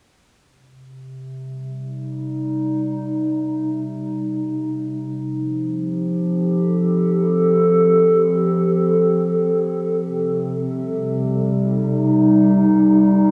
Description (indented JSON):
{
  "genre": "ambient",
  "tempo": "free time",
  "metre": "none",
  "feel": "none",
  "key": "C dorian",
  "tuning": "A4 = 440 Hz",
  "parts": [
    { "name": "warbly tape-like pad", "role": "sustained chords", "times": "1.0-13.3 s", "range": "C3 to A4", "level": "-19 LUFS", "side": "equal", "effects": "chorus, built-in reverb" }
  ],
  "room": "wet huge ambient reverb, RT60 7.1 s",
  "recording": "studio reverb",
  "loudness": "-19 LUFS",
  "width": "mono",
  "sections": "0.4-13.3 A section",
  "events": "fade-in on ambient pad 0.4-13.3",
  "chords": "0.4 Cm; 5.2 F9; 10.1 Cm",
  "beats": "free time"
}